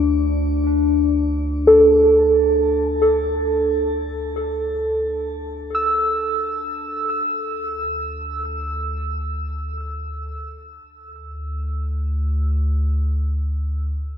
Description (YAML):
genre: ambient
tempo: free time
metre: none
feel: none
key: unclear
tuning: A4 = 439 Hz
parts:
  - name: muted felt-like synth keys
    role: arpeggios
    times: 0.0-9.2 s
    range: A4 to E6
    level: -18 LUFS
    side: equal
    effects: chorus, analog delay, shimmer reverb
  - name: round analog bass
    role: bass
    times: 0.0-14.2 s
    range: D2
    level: -24 LUFS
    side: equal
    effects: none
room: wet lush hall reverb, RT60 2.6 s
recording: dreamy mix soaked in reverb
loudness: -18 LUFS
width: side -8 dB against mid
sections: 0.0-7.3 A section; 7.3-14.2 B section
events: fade-out on analog synth bass 0.0-7.3; fade-in on analog synth bass 7.3-14.2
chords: 0.0 Dsus2; 10.8 N.C.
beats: free time